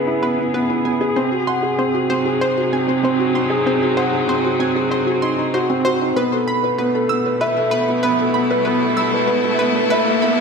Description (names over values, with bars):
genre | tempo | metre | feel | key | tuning
piano and strings electronica | 96 BPM | 4/4 | straight | unclear | A4 = 440 Hz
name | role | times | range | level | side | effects
clear string quartet | sustained chords | 0.0-10.4 s | B2 to A4 | -24 LUFS | left 2 dB | low-pass filter
felt-muted upright piano | riff | 0.0-10.4 s | B3 to B5 | -18 LUFS | right 1 dB | ping-pong delay
analog pluck | arpeggios | 0.2-10.3 s | B4 to E6 | -24 LUFS | right 1 dB | chorus, ping-pong delay
riser | sound effects | 8.0-10.4 s | none | -24 LUFS | left 1 dB | none
room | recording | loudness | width
wet scoring stage reverb, RT60 1.9 s, small room ambience | high-pass filter | -16 LUFS | side -5 dB against mid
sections
0.0-10.4 A section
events
build-up 0.0-10.4; riser 8.0-10.4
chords
0.0 C#m7; 1.2 G#7; 6.2 Asus2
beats
0.54 | 1.17 1.79 2.42 3.04 | 3.67 4.29 4.92 5.54 | 6.17 6.79 7.42 8.04 | 8.66 9.29 9.91